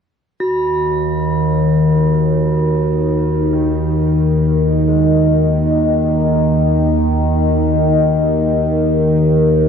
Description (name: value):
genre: dark ambient drone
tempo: free time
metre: none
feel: none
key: Eb minor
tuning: A4 = 441 Hz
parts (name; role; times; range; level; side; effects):
- overtone-sweeping drone; drone; 0.7-9.7 s; Eb2 to Eb3; -13 LUFS; equal; chorus, built-in reverb
- bronze singing bowl; texture; 0.4-9.7 s; Gb4; -24 LUFS; right 3 dB; none
- warm grand piano; arpeggios; 3.5-9.7 s; Eb3 to Ab3; -33 LUFS; left 2 dB; none
room: wet cathedral reverb, RT60 5.6 s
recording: dark, warm production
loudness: -13 LUFS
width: side -7 dB against mid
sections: 0.4-9.7 A section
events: none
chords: 0.4 Ebm